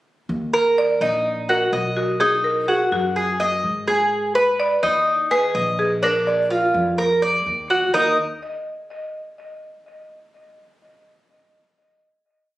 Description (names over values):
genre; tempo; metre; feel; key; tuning
latin, Cuban son and guajira; 126 BPM; 4/4; straight; Eb harmonic minor; A4 = 440 Hz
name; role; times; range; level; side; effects
upright bass; bass; 0.3-8.2 s; Bb1 to G#2; -30 LUFS; equal; none
Cuban tres; arpeggios; 0.5-8.2 s; D4 to Eb5; -19 LUFS; equal; none
buzzing marimba with medium hard mallets; melody; 0.8-8.2 s; Gb4 to Eb5; -24 LUFS; right 1 dB; tape echo
room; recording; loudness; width
moderate studio ambience, RT60 0.5 s; recorded on a phone in the room, studio reverb, compression; -17 LUFS; side -16 dB against mid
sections
0.3-7.9 verse; 7.9-9.9 final chord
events
none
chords
0.3 Ebm; 2.2 B6; 4.1 Abm; 6.0 Bb; 7.9 Eb5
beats
| 0.30 0.78 1.25 1.73 | 2.21 2.69 3.16 3.64 | 4.12 4.59 5.07 5.55 | 6.03 6.51 6.99 7.46 | 7.94